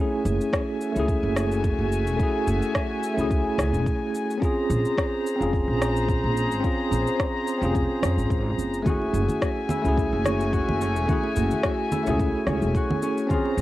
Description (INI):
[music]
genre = sunset chillout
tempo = 108 BPM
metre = 4/4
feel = swing 54% on 16ths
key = unclear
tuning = A4 = 440 Hz
[part]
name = bell-like tine electric piano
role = accompaniment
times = 0.0-13.6 s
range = A3 to Ab4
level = -26 LUFS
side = equal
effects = fast stereo tremolo, auto-pan, low-pass filter, cassette tape, tape echo
[part]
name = dark chamber string section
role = sustained chords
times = 0.0-13.6 s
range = A3 to Bb5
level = -31 LUFS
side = left 2 dB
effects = cassette tape
[part]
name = upright bass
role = bass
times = 0.2-13.6 s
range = Fb1 to F2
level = -26 LUFS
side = equal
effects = none
[part]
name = electronic cabasa and rim click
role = drums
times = 0.3-13.6 s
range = none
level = -30 LUFS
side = left 1 dB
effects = cassette tape
[part]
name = electronic kick drum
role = drums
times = 0.5-13.4 s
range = none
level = -27 LUFS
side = equal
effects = cassette tape
[part]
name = Celtic harp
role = arpeggios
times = 8.9-13.6 s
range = Db4 to Gb4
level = -32 LUFS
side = left 2 dB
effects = cassette tape, tape echo
[part]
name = congas and bongos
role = percussion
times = 8.9-13.6 s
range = none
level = -30 LUFS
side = equal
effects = none
[sound]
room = light reverb, small room ambience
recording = home recording on cassette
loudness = -22 LUFS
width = side -15 dB against mid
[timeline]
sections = 0.0-13.6 A section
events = none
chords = 0.0 Gbm9; 4.4 Bbm9; 8.9 Gbm9